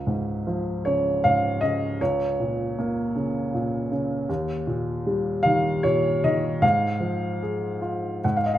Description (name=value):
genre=classical, lyrical solo piano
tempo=77 BPM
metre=3/4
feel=rubato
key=unclear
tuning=A4 = 444 Hz
part: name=warm upright piano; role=solo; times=0.0-8.6 s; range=Db2 to Gb5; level=-22 LUFS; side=equal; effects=none
room=light reverb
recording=none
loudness=-22 LUFS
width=side -12 dB against mid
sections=0.0-8.6 A section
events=none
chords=0.0 Db; 2.0 Bbm/Db; 4.3 Eb; 6.6 Fm/Ab